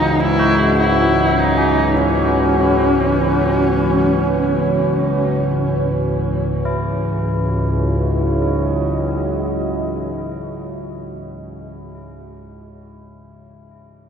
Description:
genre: dark ambient drone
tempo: free time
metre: none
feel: none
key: unclear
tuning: A4 = 445 Hz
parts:
  - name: rich horsehead fiddle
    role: melody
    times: 0.0-5.5 s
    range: C#4 to E4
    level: -20 LUFS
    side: equal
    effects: tape echo
  - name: deep dark ambient pad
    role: sustained chords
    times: 0.0-11.7 s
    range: E3 to D#5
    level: -20 LUFS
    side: right 1 dB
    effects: chorus, built-in reverb
  - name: analog drone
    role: drone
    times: 0.0-11.2 s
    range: C#2 to G#2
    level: -20 LUFS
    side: equal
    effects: chorus
  - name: tubular bells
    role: arpeggios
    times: 0.4-13.9 s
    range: C#4 to F#4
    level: -25 LUFS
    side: left 1 dB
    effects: tape echo
room: wet cathedral reverb, RT60 6.5 s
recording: in a vast, echoing space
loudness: -15 LUFS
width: side -7 dB against mid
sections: 0.0-6.7 A section; 6.7-11.4 B section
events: none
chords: 0.0 C#m; 6.7 C#madd9

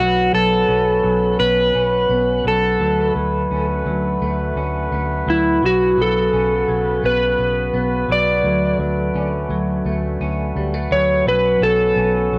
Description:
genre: dream pop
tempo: 85 BPM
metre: 4/4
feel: straight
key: B minor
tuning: A4 = 440 Hz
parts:
  - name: electric slide guitar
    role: melody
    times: 0.0-12.4 s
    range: E4 to D5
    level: -20 LUFS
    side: equal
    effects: cassette tape, analog delay
  - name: dark brass ensemble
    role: sustained chords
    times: 0.0-12.4 s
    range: C#3 to B4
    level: -27 LUFS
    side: equal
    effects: none
  - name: semi-hollow electric guitar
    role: arpeggios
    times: 0.0-12.4 s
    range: F#3 to C#4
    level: -26 LUFS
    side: equal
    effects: analog chorus, analog delay
  - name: vintage muted fingered electric bass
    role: bass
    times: 0.0-12.4 s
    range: B1 to D2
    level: -26 LUFS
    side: equal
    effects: none
room: wet booth ambience, RT60 0.2 s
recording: home recording on cassette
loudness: -18 LUFS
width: mono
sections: 0.0-12.4 A section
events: none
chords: 0.0 Bsus2; 2.8 Dmaj7; 5.6 Bsus2; 8.4 Dmaj7; 11.3 Bsus2

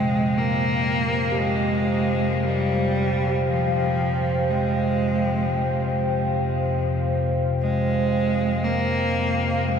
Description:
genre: dark ambient drone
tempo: free time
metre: none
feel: none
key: F minor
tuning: A4 = 441 Hz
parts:
  - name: clear cello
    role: melody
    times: 0.0-9.8 s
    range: F3 to Bb3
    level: -24 LUFS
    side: right 2 dB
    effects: ping-pong delay
  - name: dark analog pad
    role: sustained chords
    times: 0.0-9.8 s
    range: C5 to G5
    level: -26 LUFS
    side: equal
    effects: chorus
  - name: quartz singing bowl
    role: arpeggios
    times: 0.0-7.5 s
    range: Bb2 to G4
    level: -33 LUFS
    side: right 2 dB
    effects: ping-pong delay
  - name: deep rumbling drone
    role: drone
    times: 0.0-9.8 s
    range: F2 to C3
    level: -25 LUFS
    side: left 3 dB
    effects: built-in reverb
room: wet huge ambient reverb, RT60 7.3 s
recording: dreamy mix soaked in reverb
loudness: -20 LUFS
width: side -7 dB against mid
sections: 0.0-9.8 A section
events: none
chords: 0.0 Fm

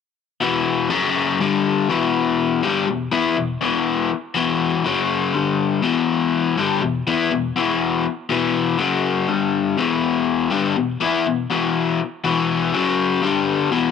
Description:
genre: rock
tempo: 122 BPM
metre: 4/4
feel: straight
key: E minor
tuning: A4 = 440 Hz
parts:
  - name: overdriven electric guitar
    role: solo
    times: 0.4-13.9 s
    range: E2 to E4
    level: -18 LUFS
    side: left 6 dB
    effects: none
room: light reverb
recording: none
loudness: -18 LUFS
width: side -6 dB against mid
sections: 0.2-13.9 A section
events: none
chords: 0.2 E5; 0.9 F#5; 1.4 G5; 1.9 Em; 4.8 F#5; 5.3 G5; 5.8 Em; 8.8 F#5; 9.3 G5; 9.8 Em; 12.7 F#5; 13.2 G5

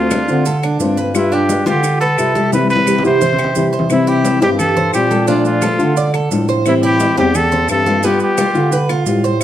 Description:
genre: latin, Cuban son and guajira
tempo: 174 BPM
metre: 4/4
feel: straight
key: C major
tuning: A4 = 441 Hz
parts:
  - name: trumpet with straight mute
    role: melody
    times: 0.0-9.4 s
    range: E4 to C5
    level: -18 LUFS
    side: equal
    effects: none
  - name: flamenco guitar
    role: accompaniment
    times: 0.0-9.4 s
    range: C3 to F4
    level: -18 LUFS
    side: left 4 dB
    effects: none
  - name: Cuban tres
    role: arpeggios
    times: 0.0-9.4 s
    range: A3 to D5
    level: -20 LUFS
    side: right 5 dB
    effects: none
  - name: mellow bass clarinet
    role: bass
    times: 0.0-9.4 s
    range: D2 to D3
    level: -18 LUFS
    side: right 1 dB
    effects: none
  - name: claves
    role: percussion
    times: 0.1-9.4 s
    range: none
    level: -31 LUFS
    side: left 5 dB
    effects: none
  - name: congas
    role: percussion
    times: 0.1-9.4 s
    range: none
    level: -22 LUFS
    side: left 2 dB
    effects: none
  - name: maracas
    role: percussion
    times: 0.1-9.4 s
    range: none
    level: -30 LUFS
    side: right 10 dB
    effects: none
room: moderate large studio reverb, RT60 1.1 s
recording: none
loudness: -12 LUFS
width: side -11 dB against mid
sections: 0.0-3.9 A section; 3.9-9.4 A section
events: drum fill 2.5-3.9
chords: 0.0 Dm7; 1.1 G7; 2.5 Cmaj7; 3.9 C; 5.3 Bbmaj7; 6.7 Am7; 8.0 G7

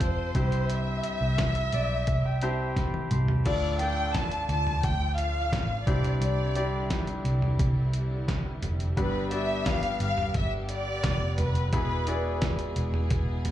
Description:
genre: piano-driven pop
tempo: 87 BPM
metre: 4/4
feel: straight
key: unclear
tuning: A4 = 435 Hz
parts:
  - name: rich studio violin section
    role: melody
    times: 0.0-12.4 s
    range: B4 to A5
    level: -31 LUFS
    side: left 1 dB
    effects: slapback echo
  - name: bright grand piano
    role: accompaniment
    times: 0.0-13.5 s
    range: G2 to C6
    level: -33 LUFS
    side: left 2 dB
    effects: slapback echo
  - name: vintage muted picked electric bass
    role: bass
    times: 0.0-13.5 s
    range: E1 to F2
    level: -28 LUFS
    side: equal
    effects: none
  - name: dusty soul sampler-style drum kit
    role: drums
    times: 0.0-13.5 s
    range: crash cymbal, handclaps, hi-hat, kick drum, snare drum, toms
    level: -30 LUFS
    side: equal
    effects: overdrive
  - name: warm studio string section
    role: sustained chords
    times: 3.5-13.5 s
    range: D3 to G#4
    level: -39 LUFS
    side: equal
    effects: none
room: light reverb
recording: live gig heard through the venue's PA, club reverb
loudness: -25 LUFS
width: side -12 dB against mid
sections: 0.0-3.5 A section; 3.5-13.5 B section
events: grand piano fill 1.4-3.5; drum fill 2.8-3.5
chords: 0.3 C; 3.5 Dm; 5.9 Cadd9; 9.0 G; 11.7 E

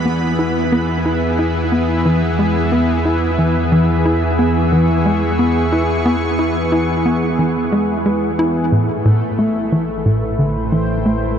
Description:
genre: ambient, sequencer-driven space music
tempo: 90 BPM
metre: 4/4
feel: straight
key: unclear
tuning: A4 = 440 Hz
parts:
  - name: lush unison pad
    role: sustained chords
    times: 0.0-11.4 s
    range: E3 to C#6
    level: -18 LUFS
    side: equal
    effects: chorus
  - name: analog drone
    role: bass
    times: 0.0-11.4 s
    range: A1 to E2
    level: -22 LUFS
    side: equal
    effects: chorus
  - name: wind-like tuned noise texture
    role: texture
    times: 0.0-8.7 s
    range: F#5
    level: -34 LUFS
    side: right 3 dB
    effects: none
  - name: tight sequencer bass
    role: riff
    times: 0.1-11.2 s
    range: A2 to E4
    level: -18 LUFS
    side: equal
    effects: tape echo
  - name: soft round pluck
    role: arpeggios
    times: 8.7-11.4 s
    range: none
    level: barely audible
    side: none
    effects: none
room: wet huge ambient reverb, RT60 9.4 s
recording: dark, warm production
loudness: -14 LUFS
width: side -8 dB against mid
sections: 0.0-8.7 A section; 8.7-11.4 B section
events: none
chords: 0.0 E; 8.7 Am7

